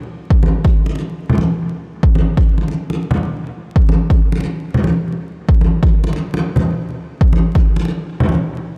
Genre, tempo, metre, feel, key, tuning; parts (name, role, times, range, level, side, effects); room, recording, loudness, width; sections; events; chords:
dubstep; 139 BPM; 4/4; swing 58% on 16ths, half-time
electronic kick drum; drums; 0.3-7.6 s; -15 LUFS; equal
congas; percussion; 0.4-8.4 s; -20 LUFS; equal
small room ambience; vinyl crackle; -16 LUFS; mono
0.0-8.8 A section